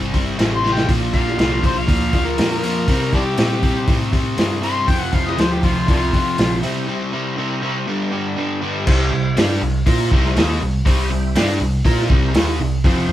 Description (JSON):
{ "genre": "blues rock power trio and southern rock", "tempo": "120 BPM", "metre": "4/4", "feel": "straight", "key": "C mixolydian", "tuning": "A4 = 440 Hz", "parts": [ { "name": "overdriven semi-hollow guitar", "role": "riff", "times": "0.0-13.1 s", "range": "F2 to Bb4", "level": "-20 LUFS", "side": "equal", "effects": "none" }, { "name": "vintage muted picked electric bass", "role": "bass", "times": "0.0-13.1 s", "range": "F1 to C3", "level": "-22 LUFS", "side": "equal", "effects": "none" }, { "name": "vintage drum kit", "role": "drums", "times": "0.1-13.0 s", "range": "crash cymbal, hi-hat, kick drum, snare drum", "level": "-19 LUFS", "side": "equal", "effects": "none" }, { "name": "overdriven harmonica", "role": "melody", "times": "0.6-6.6 s", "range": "Bb3 to C6", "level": "-23 LUFS", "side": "left 3 dB", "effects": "none" }, { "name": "tonewheel organ", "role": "sustained chords", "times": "0.6-13.1 s", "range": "Bb3 to C5", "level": "-31 LUFS", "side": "right 4 dB", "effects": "slow rotary speaker, overdrive, chorus vibrato" } ], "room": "light reverb", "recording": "band playing live in one room", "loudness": "-16 LUFS", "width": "side -13 dB against mid", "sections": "0.0-8.9 A section; 8.9-13.1 B section", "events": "drum fill 0.6; break 6.9-8.9", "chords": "0.0 C; 0.9 Bb; 2.9 C; 4.9 F; 6.6 C; 7.9 G; 8.9 C", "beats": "0.39 | 0.89 1.39 1.88 2.38 | 2.88 3.38 3.88 4.38 | 4.88 5.38 5.88 6.38 | 6.88 7.38 7.87 8.37 | 8.87 9.37 9.87 10.36 | 10.86 11.36 11.85 12.35 | 12.85" }